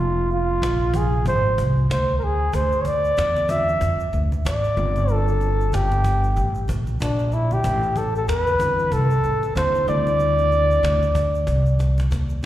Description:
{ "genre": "hip hop, jazz-hop", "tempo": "94 BPM", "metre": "4/4", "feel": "swing 61% on 16ths", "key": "D minor", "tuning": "A4 = 440 Hz", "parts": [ { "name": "breathy flugelhorn", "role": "melody", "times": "0.0-12.1 s", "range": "D4 to E5", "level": "-21 LUFS", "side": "equal", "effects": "slapback echo" }, { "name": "tine electric piano", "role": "accompaniment", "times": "0.0-11.0 s", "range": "C3 to F4", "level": "-29 LUFS", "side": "left 1 dB", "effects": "overdrive, fast stereo tremolo, slapback echo" }, { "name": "upright bass", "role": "bass", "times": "0.0-12.5 s", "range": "F1 to F2", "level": "-22 LUFS", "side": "equal", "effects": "none" }, { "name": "cajon", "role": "drums", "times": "0.3-12.3 s", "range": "none", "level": "-31 LUFS", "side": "equal", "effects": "slapback echo" }, { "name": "egg shaker and congas", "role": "percussion", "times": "2.5-12.5 s", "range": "none", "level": "-36 LUFS", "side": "right 1 dB", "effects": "none" } ], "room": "light reverb, small room ambience", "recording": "live gig heard through the venue's PA, recital hall reverb", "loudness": "-18 LUFS", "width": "side -13 dB against mid", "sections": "0.0-12.5 A section", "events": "drum fill 11.5-12.5", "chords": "0.0 Fm7; 2.5 Dm9; 4.8 Gm9; 7.6 Am9; 9.9 Dsus2" }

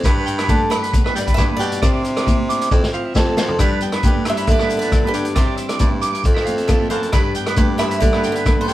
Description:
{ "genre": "highlife guitar band", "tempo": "135 BPM", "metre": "4/4", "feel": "straight", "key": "G mixolydian", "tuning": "A4 = 440 Hz", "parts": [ { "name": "clean electric guitar", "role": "accompaniment", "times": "0.0-8.7 s", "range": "G2 to G4", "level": "-28 LUFS", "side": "left 2 dB", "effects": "none" }, { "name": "electric guitar at the edge of break-up", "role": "arpeggios", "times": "0.0-8.7 s", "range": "B4 to D6", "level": "-25 LUFS", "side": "right 4 dB", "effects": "tremolo" }, { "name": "bright baritone saxophone", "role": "bass", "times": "0.0-8.7 s", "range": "F2 to G3", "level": "-23 LUFS", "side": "equal", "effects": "none" }, { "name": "vintage drum kit", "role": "drums", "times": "0.0-8.7 s", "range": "hi-hat, kick drum, rim click, snare drum, toms", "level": "-18 LUFS", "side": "equal", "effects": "none" }, { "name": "shekere", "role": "percussion", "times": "0.0-8.7 s", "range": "none", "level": "-27 LUFS", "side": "left 1 dB", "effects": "none" }, { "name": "congas", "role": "percussion", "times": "0.1-8.7 s", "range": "none", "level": "-26 LUFS", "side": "right 1 dB", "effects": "none" }, { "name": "picked old ladder-braced acoustic guitar", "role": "melody", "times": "0.5-8.7 s", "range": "D4 to E5", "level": "-24 LUFS", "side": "right 1 dB", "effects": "none" }, { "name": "mellow trombone", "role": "second line", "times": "3.2-8.7 s", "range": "C3 to G3", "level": "-29 LUFS", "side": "left 3 dB", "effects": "none" } ], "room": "light reverb", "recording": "band playing live in one room", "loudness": "-15 LUFS", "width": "side -15 dB against mid", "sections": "0.0-3.6 A section; 3.6-8.7 B section", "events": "drum fill 2.7-3.6", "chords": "0.0 G; 1.8 Cadd9; 2.7 Fmaj7; 3.6 G; 5.4 Cadd9; 6.2 Fmaj7; 7.1 G" }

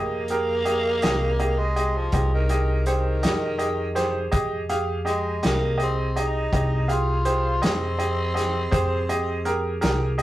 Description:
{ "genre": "slow blues", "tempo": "55 BPM (dotted quarters)", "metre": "12/8", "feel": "straight", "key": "F minor", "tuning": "A4 = 440 Hz", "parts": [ { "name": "growling tenor saxophone", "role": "second line", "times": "0.0-9.8 s", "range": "Eb3 to F4", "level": "-27 LUFS", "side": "equal", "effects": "none" }, { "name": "bright concert grand piano", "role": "accompaniment", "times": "0.0-10.2 s", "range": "G4 to F5", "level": "-25 LUFS", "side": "right 1 dB", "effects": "none" }, { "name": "upright bass", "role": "bass", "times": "0.0-10.2 s", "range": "C2 to F2", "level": "-26 LUFS", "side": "equal", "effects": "none" }, { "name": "vintage drum kit", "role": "drums", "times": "0.3-10.2 s", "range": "hi-hat, kick drum, snare drum", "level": "-28 LUFS", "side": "equal", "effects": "none" } ], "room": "moderate studio reverb, RT60 0.6 s", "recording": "rough rehearsal-room recording", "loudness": "-21 LUFS", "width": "side -15 dB against mid", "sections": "0.0-10.2 A section", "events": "tenor saxophone solo 0.0-10.2", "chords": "0.0 Fm9" }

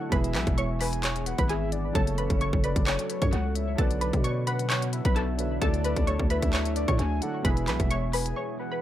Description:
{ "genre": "hip hop, trap", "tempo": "131 BPM", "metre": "4/4", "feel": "half-time", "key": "unclear", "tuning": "A4 = 441 Hz", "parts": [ { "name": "warbly dusty pluck", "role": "melody", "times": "0.0-8.8 s", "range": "G#4 to C#6", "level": "-32 LUFS", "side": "equal", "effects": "chorus, analog delay" }, { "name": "soft octave-layered synth lead", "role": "second line", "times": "0.0-8.8 s", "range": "C#5 to G#5", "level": "-36 LUFS", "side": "left 3 dB", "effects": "chorus, analog delay" }, { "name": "warm concert grand piano", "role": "accompaniment", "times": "0.0-8.8 s", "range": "B2 to B4", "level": "-35 LUFS", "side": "right 4 dB", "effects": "analog delay" }, { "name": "deep dark ambient pad", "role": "sustained chords", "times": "0.0-8.8 s", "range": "C#3 to A4", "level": "-36 LUFS", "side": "left 1 dB", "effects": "chorus, built-in reverb" }, { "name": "growling 808-style bass", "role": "bass", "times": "0.1-8.3 s", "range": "E1 to B2", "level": "-29 LUFS", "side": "equal", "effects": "none" }, { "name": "trap drum kit", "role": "drums", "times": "0.1-8.4 s", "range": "handclaps, hi-hat, kick drum", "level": "-28 LUFS", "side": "equal", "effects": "none" } ], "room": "digital ambience", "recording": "echo-heavy mix", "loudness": "-24 LUFS", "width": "side -12 dB against mid", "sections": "0.0-8.8 A section", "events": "break 8.4-8.8", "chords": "0.1 E; 2.0 F#m; 3.8 Bm; 5.6 Dadd9; 7.4 E" }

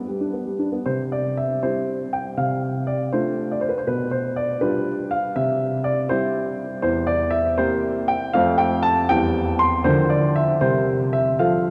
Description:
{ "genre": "classical-period piano sonatina", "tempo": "80 BPM (dotted quarters)", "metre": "6/8", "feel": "rubato", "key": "C major", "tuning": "A4 = 441 Hz", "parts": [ { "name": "warm grand piano", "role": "solo", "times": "0.0-11.7 s", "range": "E2 to C6", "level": "-22 LUFS", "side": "equal", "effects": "none" } ], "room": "wet cathedral reverb, RT60 5.4 s", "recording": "recorded in a church or concert hall", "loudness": "-22 LUFS", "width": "mono", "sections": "0.9-11.7 A section", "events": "none", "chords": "0.0 G; 0.9 C; 2.4 Dm7/C; 3.9 G7/B; 5.4 C; 6.8 C7/E; 8.3 F; 9.1 C/E; 9.9 Bb/D; 10.6 C7" }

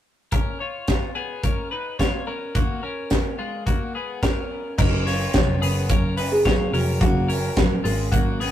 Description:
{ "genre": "jangly indie pop", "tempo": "108 BPM", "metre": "4/4", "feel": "straight", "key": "F# major", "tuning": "A4 = 440 Hz", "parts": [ { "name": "twelve-string electric guitar", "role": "arpeggios", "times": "0.3-8.5 s", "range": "G#3 to C#5", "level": "-28 LUFS", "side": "left 3 dB", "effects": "tape echo" }, { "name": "modern studio drum kit", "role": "drums", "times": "0.3-8.5 s", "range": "crash cymbal, hi-hat, kick drum, snare drum", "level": "-22 LUFS", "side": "equal", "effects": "none" }, { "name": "buzzing kalimba", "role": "melody", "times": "4.2-8.5 s", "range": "F#4 to D#5", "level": "-28 LUFS", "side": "right 1 dB", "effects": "none" }, { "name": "picked steel-string acoustic guitar", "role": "accompaniment", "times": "4.8-8.5 s", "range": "F#3 to A#4", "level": "-28 LUFS", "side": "right 2 dB", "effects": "none" }, { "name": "vintage muted picked electric bass", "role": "bass", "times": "4.8-8.5 s", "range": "E#1 to A#1", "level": "-24 LUFS", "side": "equal", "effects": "none" } ], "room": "moderate booth ambience, RT60 0.2 s", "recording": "rough rehearsal-room recording, tube saturation", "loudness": "-20 LUFS", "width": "side -11 dB against mid", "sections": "0.3-4.8 A section; 4.8-8.5 B section", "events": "none", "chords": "0.3 Bmaj9#11; 2.6 G#m11; 4.8 F#maj7" }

